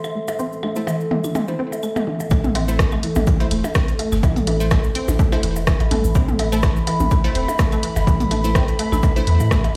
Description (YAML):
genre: minimal techno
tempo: 125 BPM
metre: 4/4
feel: swing 55% on 16ths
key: A minor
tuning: A4 = 440 Hz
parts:
  - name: cabasa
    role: percussion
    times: 0.0-9.7 s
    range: none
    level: -42 LUFS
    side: equal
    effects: none
  - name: electronic percussion blips, claves and toms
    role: percussion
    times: 0.0-9.7 s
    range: none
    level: -28 LUFS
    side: equal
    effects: delay
  - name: bubbling stepped-filter texture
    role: texture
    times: 0.0-2.3 s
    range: none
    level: barely audible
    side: none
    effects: none
  - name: deep dark ambient pad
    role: texture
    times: 0.0-9.8 s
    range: A4 to C6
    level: -30 LUFS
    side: equal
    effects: chorus, built-in reverb, sidechain pumping
  - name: resonant blip pluck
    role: riff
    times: 0.2-9.5 s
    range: E3 to C4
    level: -28 LUFS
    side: equal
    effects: ensemble chorus, sidechain pumping, digital delay
  - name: punchy sub bass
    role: bass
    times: 0.3-9.5 s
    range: E1 to A2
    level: -24 LUFS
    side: equal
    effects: sidechain pumping, high-pass filter
  - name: wavetable chord stab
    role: stabs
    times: 0.8-9.2 s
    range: A3 to C5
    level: -31 LUFS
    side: equal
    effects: delay
  - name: dusty soul sampler-style drum kit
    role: drums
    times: 2.3-9.6 s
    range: hi-hat, shaker, snare drum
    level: -39 LUFS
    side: equal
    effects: sidechain pumping on perc, high-pass filter on perc, high-pass filter on snare, sidechain pumping on hats, high-pass filter on hats
  - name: electronic kick drum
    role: drums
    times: 2.3-9.6 s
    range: none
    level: -21 LUFS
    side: equal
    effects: none
  - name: punchy analog drum machine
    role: drums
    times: 2.6-9.7 s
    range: hi-hat, rim click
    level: -28 LUFS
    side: equal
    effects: none
room: light reverb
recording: played on a big sound system in a bare room, stone room reverb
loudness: -19 LUFS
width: mono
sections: 0.0-2.3 A section; 2.3-9.8 B section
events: filter sweep on synth arpeggio sound 0.0-2.3; drop 2.3-9.8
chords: 0.0 Am; 2.3 A5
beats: | 0.39 0.87 1.35 1.83 | 2.31 2.79 3.27 3.75 | 4.23 4.71 5.19 5.67 | 6.15 6.63 7.11 7.59 | 8.07 8.55 9.03 9.51